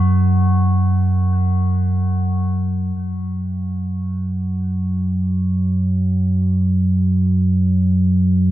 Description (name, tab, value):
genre	dark ambient drone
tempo	free time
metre	none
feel	none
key	unclear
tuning	A4 = 440 Hz
part	tubular bells	arpeggios	0.0-3.0 s	F#4	-33 LUFS	left 5 dB	analog delay
part	deep rumbling drone	drone	0.0-8.5 s	F#2 to F#3	-16 LUFS	equal	built-in reverb
room	little or no reverb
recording	none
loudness	-16 LUFS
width	side -14 dB against mid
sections	0.0-3.0 A section; 3.0-8.5 B section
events	none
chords	0.0 F#5; 3.0 N.C.